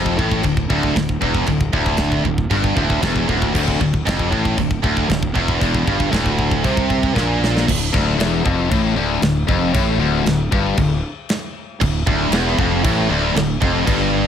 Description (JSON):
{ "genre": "heavy metal", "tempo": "116 BPM", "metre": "4/4", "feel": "straight", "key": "D minor", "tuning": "A4 = 441 Hz", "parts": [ { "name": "heavy high-gain guitar", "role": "riff", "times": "0.0-7.7, 11.8-14.3 s", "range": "D2 to C3", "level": "-22 LUFS", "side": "right 9 dB", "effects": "distortion" }, { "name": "high-gain distorted guitar", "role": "riff", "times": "0.0-14.3 s", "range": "D2 to C3", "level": "-22 LUFS", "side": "left 9 dB", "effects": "distortion" }, { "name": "tight distorted guitar", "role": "riff", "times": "0.0-14.3 s", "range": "D2 to C3", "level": "-23 LUFS", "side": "equal", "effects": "distortion" }, { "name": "fuzz fingered electric bass", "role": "bass", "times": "0.0-14.3 s", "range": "D1 to C2", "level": "-22 LUFS", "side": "equal", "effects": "overdrive" }, { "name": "tight metal drum kit", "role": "drums", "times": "0.1-14.0 s", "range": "china cymbal, crash cymbal, kick drum, snare drum", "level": "-22 LUFS", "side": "equal", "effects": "none" } ], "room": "small room ambience", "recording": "none", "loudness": "-16 LUFS", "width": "side -8 dB against mid", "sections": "0.0-7.7 A section; 7.7-14.3 B section", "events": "drum fill 7.2-7.7", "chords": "0.0 Dm" }